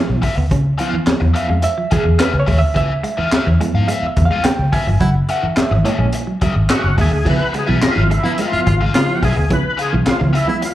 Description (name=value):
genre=funk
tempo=107 BPM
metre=4/4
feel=straight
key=unclear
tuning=A4 = 441 Hz
part: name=semi-hollow electric guitar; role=riff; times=0.0-10.7 s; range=E3 to Db4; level=-25 LUFS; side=right 4 dB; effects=tremolo, slapback echo
part: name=reed electric piano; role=stabs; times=0.0-10.6 s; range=Db3 to Ab5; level=-21 LUFS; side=right 3 dB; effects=fast tremolo, slapback echo
part: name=vintage muted fingered electric bass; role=bass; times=0.1-10.4 s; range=Gb1 to Ab2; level=-16 LUFS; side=equal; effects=none
part: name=overdriven electric guitar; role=accompaniment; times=0.2-10.7 s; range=Db4 to Gb5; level=-24 LUFS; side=left 4 dB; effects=wah, tube saturation, spring reverb, slapback echo
part: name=crunchy breakbeat drum kit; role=drums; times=0.2-10.7 s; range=crash cymbal, handclaps, hi-hat, kick drum, snare drum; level=-20 LUFS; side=equal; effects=none
part: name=breathy baritone saxophone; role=second line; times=5.0-10.6 s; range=Fb4 to F4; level=-24 LUFS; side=equal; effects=slapback echo
part: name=tonewheel organ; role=melody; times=6.7-10.7 s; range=E4 to Cb5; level=-21 LUFS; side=left 2 dB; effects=overdrive, chorus vibrato, slow rotary speaker, slapback echo
room=little or no reverb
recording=live gig heard through the venue's PA, club reverb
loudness=-14 LUFS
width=side -13 dB against mid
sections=0.0-7.3 A section; 7.3-10.7 B section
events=reed electric piano solo 0.0-7.3; band accent 5.0-7.3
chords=0.0 Db7#9; 5.0 Gb9; 7.3 Db7#9